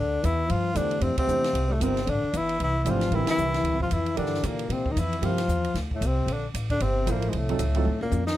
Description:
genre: modal jazz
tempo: 228 BPM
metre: 4/4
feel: swing 60% on 8ths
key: D minor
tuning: A4 = 438 Hz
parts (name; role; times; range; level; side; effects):
- breathy tenor saxophone; melody; 0.0-8.4 s; G3 to F4; -28 LUFS; equal; none
- breathy trombone; second line; 0.0-8.4 s; G2 to F3; -30 LUFS; left 5 dB; none
- upright bass; bass; 0.0-8.4 s; G1 to D3; -27 LUFS; equal; none
- compact cocktail drum kit; drums; 0.2-8.3 s; hi-hat, kick drum, ride cymbal, snare drum, toms; -36 LUFS; right 1 dB; none
- warm concert grand piano; accompaniment; 0.7-7.9 s; C3 to C5; -31 LUFS; right 5 dB; none
room: light reverb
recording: close, detailed microphones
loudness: -23 LUFS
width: side -14 dB against mid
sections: 0.0-8.4 A section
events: band accent 1.2, 3.3; drum fill 7.9-8.4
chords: 0.0 Dm11; 4.2 Gm11; 7.3 F7b9

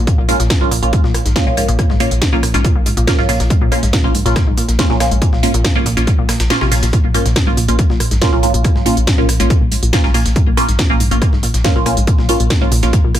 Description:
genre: driving peak-time techno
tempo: 140 BPM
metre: 4/4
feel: straight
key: Bb minor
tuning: A4 = 439 Hz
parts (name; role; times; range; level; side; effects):
- analog pluck; riff; 0.0-13.2 s; Ab2 to C3; -20 LUFS; left 1 dB; chorus, sidechain pumping, dub echo
- filtered dub chord stab; stabs; 0.0-12.9 s; Bb3 to F4; -19 LUFS; right 2 dB; phaser, wide subtle chorus, sidechain pumping, digital delay
- saturated sub bass; bass; 0.0-13.1 s; Bb1; -18 LUFS; equal; overdrive, sidechain pumping, low-pass filter
- breakbeat sampler-style drum kit; drums; 0.1-13.2 s; hi-hat, snare drum; -29 LUFS; left 1 dB; high-pass filter on hats, high-pass filter on snare, high-pass filter on room
- electronic kick drum; drums; 0.1-13.0 s; none; -15 LUFS; equal; none
- techno drum kit; drums; 0.1-13.2 s; hi-hat, rim click, snare drum; -21 LUFS; equal; none
room: light reverb, digital ambience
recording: none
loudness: -12 LUFS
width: side -11 dB against mid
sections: 0.0-13.2 A section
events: kick drops out 6.5-6.9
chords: 0.0 Bbm

